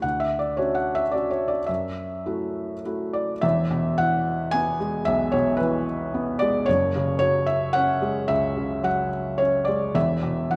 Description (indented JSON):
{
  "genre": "classical, lyrical solo piano",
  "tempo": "110 BPM",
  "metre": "3/4",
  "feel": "rubato",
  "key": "unclear",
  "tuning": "A4 = 440 Hz",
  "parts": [
    { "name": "felt-muted upright piano", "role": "solo", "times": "0.0-10.6 s", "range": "E1 to G#5", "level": "-24 LUFS", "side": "equal", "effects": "none" }
  ],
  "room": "moderate scoring stage reverb, RT60 1.8 s",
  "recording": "recorded in a church or concert hall",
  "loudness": "-24 LUFS",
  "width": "mono",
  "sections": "0.0-3.4 A section; 3.4-10.6 B section",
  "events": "none",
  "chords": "0.0 Dmaj7; 1.7 F#m7; 3.4 Eadd9; 6.7 F#sus2; 10.0 E5",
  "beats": "| 0.03 0.58 1.13 | 1.69 2.26 2.85 | 3.44 3.99 4.53 | 5.06 5.59 6.14 | 6.68 7.21 7.75 | 8.29 8.84 9.39 | 9.95 10.51"
}